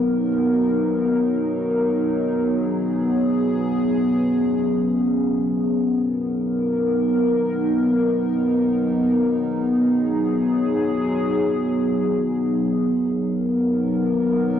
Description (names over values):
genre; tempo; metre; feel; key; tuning
hip hop; free time; none; none; unclear; A4 = 440 Hz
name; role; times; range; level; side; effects
dark analog pad; solo; 0.0-14.6 s; F#3 to A#4; -18 LUFS; equal; chorus, phaser
room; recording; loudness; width
light reverb, digital ambience; dry, gritty hardware recording, cassette tape; -18 LUFS; side -9 dB against mid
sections
0.0-13.0 A section; 13.0-14.6 B section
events
none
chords
0.0 Bmaj7; 2.3 G#m7; 5.8 Bmaj7; 9.4 G#m7; 13.0 Bmaj7